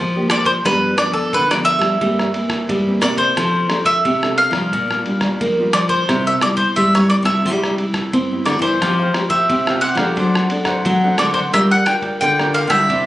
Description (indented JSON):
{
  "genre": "samba and choro",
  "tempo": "88 BPM",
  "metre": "4/4",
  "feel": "straight",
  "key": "F major",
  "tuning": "A4 = 440 Hz",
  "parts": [
    { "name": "bowl-back mandolin", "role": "melody", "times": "0.0-13.1 s", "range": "A4 to G5", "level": "-17 LUFS", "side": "equal", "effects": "plate reverb" },
    { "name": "nylon-string guitar", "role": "accompaniment", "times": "0.0-13.1 s", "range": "G2 to Bb4", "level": "-22 LUFS", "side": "left 1 dB", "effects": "none" },
    { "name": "nylon-string guitar", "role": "bass", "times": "0.0-13.1 s", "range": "Bb2 to C4", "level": "-20 LUFS", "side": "equal", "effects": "none" },
    { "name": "lo-fi sampler-style drum kit", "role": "drums", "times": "0.3-13.1 s", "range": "kick drum, ride cymbal, rim click", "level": "-24 LUFS", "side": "equal", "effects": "none" },
    { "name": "cavaquinho", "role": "accompaniment", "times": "8.8-13.1 s", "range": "D4 to G5", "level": "-24 LUFS", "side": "right 2 dB", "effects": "none" }
  ],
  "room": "moderate studio reverb, RT60 0.5 s",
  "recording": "recorded on a phone in the room, club reverb, nothing above 10.6 kHz",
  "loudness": "-14 LUFS",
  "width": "side -15 dB against mid",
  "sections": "0.0-13.1 A section",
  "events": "none",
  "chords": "0.0 Bb6/F; 0.7 G7; 2.0 C7/G; 3.4 F6; 4.7 Bb6; 6.1 C; 8.8 Fsus2; 10.2 D7/F#; 11.5 Gm7",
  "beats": "| 0.65 1.33 2.01 2.69 | 3.37 4.05 4.73 5.41 | 6.09 6.77 7.45 8.13 | 8.81 9.49 10.17 10.85 | 11.54 12.22 12.90"
}